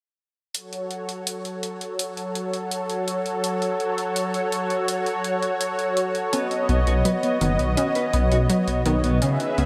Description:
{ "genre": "synthwave", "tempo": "83 BPM", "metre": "4/4", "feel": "straight", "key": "F# dorian", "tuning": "A4 = 439 Hz", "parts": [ { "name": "lush unison pad", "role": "sustained chords", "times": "0.5-9.7 s", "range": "F#3 to E5", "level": "-26 LUFS", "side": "equal", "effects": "chorus" }, { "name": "electronic hi-hat", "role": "drums", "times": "0.5-9.7 s", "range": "none", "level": "-33 LUFS", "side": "equal", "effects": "none" }, { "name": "analog pluck", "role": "arpeggios", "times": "6.3-9.7 s", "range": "D#3 to C#4", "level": "-29 LUFS", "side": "equal", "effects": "chorus, digital delay" }, { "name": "mellow electric guitar", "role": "riff", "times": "6.3-9.7 s", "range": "C#3 to B4", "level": "-31 LUFS", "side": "equal", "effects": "subtle chorus, digital delay" }, { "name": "dark detuned saw bass", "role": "bass", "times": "6.7-9.7 s", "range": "F#1 to C#2", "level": "-24 LUFS", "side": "equal", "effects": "none" } ], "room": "wet lush hall reverb, RT60 2.5 s", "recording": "bright 1980s-style digital production", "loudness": "-24 LUFS", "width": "mono", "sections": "0.5-9.7 A section", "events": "none", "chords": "0.5 F#m; 6.3 Badd9" }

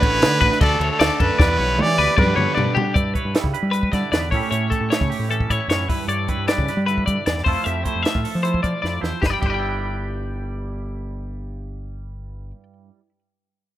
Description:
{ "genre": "math rock and midwest emo", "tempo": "153 BPM", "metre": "4/4", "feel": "straight", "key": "G lydian", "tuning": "A4 = 440 Hz", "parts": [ { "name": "bright trumpet", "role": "melody", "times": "0.0-2.8 s", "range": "A4 to D5", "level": "-20 LUFS", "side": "right 2 dB", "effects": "slapback echo" }, { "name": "twelve-string electric guitar", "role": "arpeggios", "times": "0.0-12.6 s", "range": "G4 to G5", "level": "-24 LUFS", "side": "left 6 dB", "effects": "slapback echo" }, { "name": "overdriven semi-hollow guitar", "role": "riff", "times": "0.0-3.0 s", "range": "G2 to F#4", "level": "-26 LUFS", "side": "right 3 dB", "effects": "none" }, { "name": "growling fingered electric bass", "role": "bass", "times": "0.0-12.5 s", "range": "G1 to G3", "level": "-24 LUFS", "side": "equal", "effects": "overdrive" }, { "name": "compact cocktail drum kit", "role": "drums", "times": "0.0-9.5 s", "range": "crash cymbal, hi-hat, kick drum, snare drum, toms", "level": "-21 LUFS", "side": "equal", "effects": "none" }, { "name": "twangy electric guitar", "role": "accompaniment", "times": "2.9-13.2 s", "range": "G2 to C#5", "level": "-29 LUFS", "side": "right 8 dB", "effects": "lush chorus" } ], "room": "small room ambience", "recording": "rough home demo mix", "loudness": "-18 LUFS", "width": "side -13 dB against mid", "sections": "0.0-3.0 A section; 3.0-9.2 B section; 9.2-12.4 C section", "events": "drum fill 1.4-3.0, 8.8-9.2", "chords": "0.0 Dmaj7; 1.4 Em7; 2.2 G; 3.0 G6; 4.3 A7; 5.9 G6; 7.5 Fmaj7; 9.2 G6" }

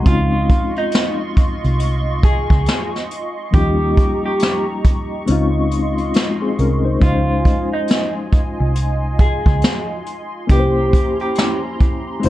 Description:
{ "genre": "lo-fi hip hop", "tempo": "69 BPM", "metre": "4/4", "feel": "swing 62% on 16ths", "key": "Db major", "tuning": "A4 = 440 Hz", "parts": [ { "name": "reed electric piano", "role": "accompaniment", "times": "0.0-12.3 s", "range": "F3 to C5", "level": "-22 LUFS", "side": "left 4 dB", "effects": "fast tremolo, low-pass filter" }, { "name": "hollow soft pad", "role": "sustained chords", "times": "0.0-12.3 s", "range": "Db4 to Db6", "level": "-27 LUFS", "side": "right 1 dB", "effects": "ensemble chorus, low-pass filter" }, { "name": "vintage muted fingered electric bass", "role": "bass", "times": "0.0-12.3 s", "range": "F1 to Eb2", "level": "-18 LUFS", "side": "equal", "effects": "none" }, { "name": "electric guitar through a small old amp", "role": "melody", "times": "0.1-11.6 s", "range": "Eb4 to Ab4", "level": "-22 LUFS", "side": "right 1 dB", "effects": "harmonic tremolo, low-pass filter, tape echo" }, { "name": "vintage brush drum kit", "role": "drums", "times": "0.1-12.3 s", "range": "hi-hat, kick drum, snare drum", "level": "-16 LUFS", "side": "equal", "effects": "vintage 12-bit sampler grit" } ], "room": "light reverb", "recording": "dark, warm production", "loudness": "-15 LUFS", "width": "side -15 dB against mid", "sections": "0.0-7.0 A section; 7.0-12.3 B section", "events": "kick muted 5.3-7.0", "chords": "0.1 Dbmaj9; 3.5 Eb7; 5.3 Dbmaj9; 10.5 C7b9" }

